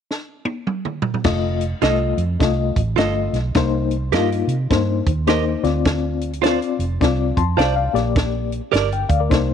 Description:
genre	uptempo 1960s-style soul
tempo	104 BPM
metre	4/4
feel	swing 62% on 8ths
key	unclear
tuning	A4 = 440 Hz
part	compact cocktail drum kit	drums	0.1-9.5 s	crash cymbal, hi-hat, kick drum, snare drum, toms	-22 LUFS	right 2 dB	none
part	reed electric piano	accompaniment	1.2-9.5 s	A3 to C6	-21 LUFS	left 10 dB	fast tremolo
part	vintage muted fingered electric bass	bass	1.2-9.5 s	F1 to C3	-22 LUFS	right 2 dB	none
part	direct-recorded clean electric guitar	stabs	1.8-8.9 s	F4 to Eb5	-22 LUFS	right 15 dB	spring reverb
room	light reverb, studio ambience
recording	1960s-style stereo with parts hard left and right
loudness	-17 LUFS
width	side -8 dB against mid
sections	0.0-1.2 A section; 1.2-9.5 B section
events	drum fill 0.1-1.2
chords	0.0 N.C.; 1.2 F7; 3.6 Cm7; 5.6 Dm7; 7.9 Bb6

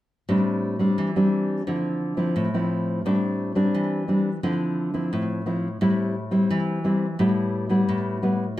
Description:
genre	samba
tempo	87 BPM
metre	4/4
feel	straight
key	A minor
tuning	A4 = 437 Hz
part	nylon-string guitar	solo	0.3-8.6 s	A2 to E4	-21 LUFS	equal	slapback echo
room	moderate studio reverb, RT60 0.5 s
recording	none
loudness	-21 LUFS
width	side -14 dB against mid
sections	0.3-3.1 A section; 3.1-8.6 B section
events	none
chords	0.3 Am7; 1.7 Dm9; 3.1 Am7; 4.4 Dm9; 5.8 Am7; 7.2 Emadd11/A

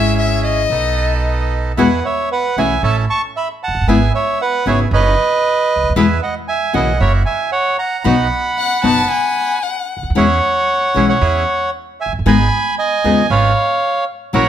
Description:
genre	tango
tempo	115 BPM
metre	4/4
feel	rubato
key	E major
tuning	A4 = 440 Hz
part	warm violin	second line	0.0-1.5, 8.6-10.0 s	D#5 to A5	-18 LUFS	left 5 dB	none
part	nylon-string guitar	accompaniment	0.0-14.4 s	B2 to G#4	-18 LUFS	left 5 dB	none
part	bandoneon	stabs	0.0-14.5 s	A#3 to B4	-23 LUFS	right 6 dB	none
part	upright bass	bass	0.0-14.5 s	F1 to E2	-18 LUFS	right 2 dB	none
part	bandoneon	melody	1.8-14.5 s	B4 to C#6	-16 LUFS	right 2 dB	none
room	light reverb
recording	none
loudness	-13 LUFS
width	side -10 dB against mid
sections	0.0-1.8 A section; 1.8-14.5 B section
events	violin solo 0.0-1.8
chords	0.0 C#m/G#; 0.7 B7; 1.8 Eadd9; 2.8 A; 3.9 E/G#; 4.9 Badd9/F#; 6.0 E; 7.0 F#7; 8.1 B; 10.2 E6; 11.2 C#m/E; 12.3 G#m; 13.3 C#7/G#

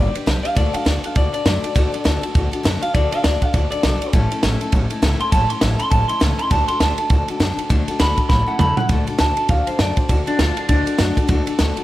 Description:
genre	rockabilly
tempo	202 BPM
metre	4/4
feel	swing 60% on 8ths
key	D major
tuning	A4 = 440 Hz
part	electric guitar through a small old amp	melody	0.0-11.6 s	D4 to C6	-22 LUFS	equal	analog delay
part	picked steel-string acoustic guitar	accompaniment	0.0-11.8 s	A2 to B4	-25 LUFS	left 3 dB	none
part	upright bass	bass	0.0-11.8 s	G1 to F#2	-21 LUFS	equal	none
part	compact cocktail drum kit	drums	0.2-11.8 s	kick drum, ride cymbal, snare drum, toms	-19 LUFS	equal	none
room	light reverb, studio reverb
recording	none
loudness	-16 LUFS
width	side -15 dB against mid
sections	0.0-8.9 A section; 8.9-11.8 B section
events	clean electric guitar solo 0.0-8.9; drum fill 8.3-8.9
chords	0.0 G; 0.6 D; 4.1 A; 6.5 D; 8.3 A; 8.9 D

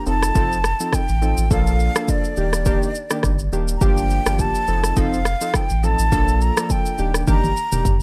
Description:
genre	afrobeats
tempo	104 BPM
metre	4/4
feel	swing 55% on 16ths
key	Bb major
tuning	A4 = 440 Hz
part	breathy jazz flute	melody	0.0-8.0 s	D5 to Bb5	-26 LUFS	equal	none
part	warm analog keys	accompaniment	0.0-7.9 s	Eb3 to A4	-27 LUFS	equal	chorus
part	saturated sub bass	bass	0.1-8.0 s	Eb1 to Bb1	-23 LUFS	equal	none
part	afro-pop drum kit	drums	0.1-8.0 s	kick drum, rim click, shaker, toms	-23 LUFS	equal	none
room	digital ambience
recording	dry, gritty hardware recording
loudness	-19 LUFS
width	mono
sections	0.0-8.0 A section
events	drum fill 7.3-8.0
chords	0.1 F7; 1.5 Bbmaj7; 2.4 Ebmaj7; 3.8 Gm7; 4.7 F7; 6.1 Bbmaj7; 7.0 Ebmaj7

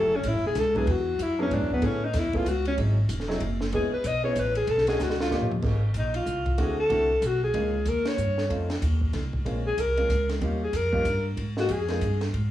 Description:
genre	jazz, small-group swing and bop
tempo	189 BPM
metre	3/4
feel	swing 62% on 8ths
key	E major, Ab major from 5.6 s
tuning	A4 = 442 Hz
part	breathy alto saxophone	melody	0.0-12.2 s	B3 to D#5	-26 LUFS	left 1 dB	cassette tape
part	warm grand piano	accompaniment	0.0-12.0 s	F#3 to B4	-32 LUFS	right 1 dB	none
part	upright bass	bass	0.0-12.5 s	E1 to A2	-28 LUFS	equal	none
part	compact cocktail drum kit	drums	0.2-12.4 s	crash cymbal, hi-hat, kick drum, ride cymbal, snare drum, toms	-34 LUFS	equal	cassette tape
room	light reverb, studio ambience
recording	home recording on cassette, small room reverb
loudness	-23 LUFS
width	side -13 dB against mid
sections	0.0-5.6 A section; 5.6-12.5 B section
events	drum fill 5.0-5.6; band accent 8.0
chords	0.0 F#m9; 0.9 E9; 1.8 Amaj7; 2.8 G#7b13; 3.7 C#m9; 4.7 B13; 5.3 D#9; 5.6 Ab69; 6.6 D9; 7.5 Db69; 8.5 F7b13; 9.5 Bbm9; 10.4 Eb9; 11.4 Ab69

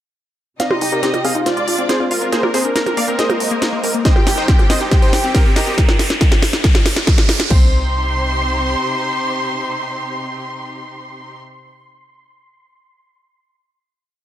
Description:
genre	uplifting trance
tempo	139 BPM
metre	4/4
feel	straight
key	C minor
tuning	A4 = 440 Hz
part	supersaw stab	melody	0.6-11.4 s	Eb4 to F5	-22 LUFS	right 1 dB	sidechain pumping, low-pass filter, tape echo
part	rich studio violin section	second line	0.6-11.4 s	Bb3 to C6	-23 LUFS	equal	dub echo
part	warm baby grand piano	second line	0.6-11.4 s	F4 to F5	-31 LUFS	left 1 dB	none
part	muted studio string section	sustained chords	0.6-11.4 s	C3 to G4	-28 LUFS	left 1 dB	sidechain pumping
part	analog pluck	arpeggios	0.6-7.7 s	Bb3 to C6	-24 LUFS	left 3 dB	chorus, sidechain pumping, tape echo
part	techno drum kit	drums	0.6-7.5 s	hi-hat, percussion blips, snare drum	-20 LUFS	right 1 dB	sidechain pumping on hats, sidechain pumping on perc
part	riser	sound effects	3.8-7.5 s	none	-26 LUFS	right 1 dB	none
part	tight sequencer bass	bass	0.8-8.8 s	F1 to C2	-22 LUFS	equal	sidechain pumping, high-pass filter
part	techno drum kit	drums	4.1-7.6 s	crash cymbal, kick drum	-13 LUFS	equal	none
room	light reverb, digital ambience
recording	none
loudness	-14 LUFS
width	side -12 dB against mid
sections	0.6-7.5 build; 7.5-11.0 final chord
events	build-up 0.6-7.5; drum fill 0.6-7.5; filter sweep on supersaw synth 0.6-5.8; filter sweep on synth pluck 0.6-5.8; riser 3.8-7.5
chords	0.6 Cm; 1.5 Fm; 2.3 Bbadd9; 3.2 Abadd9; 4.1 Cm/G; 5.8 N.C.; 7.5 Cm

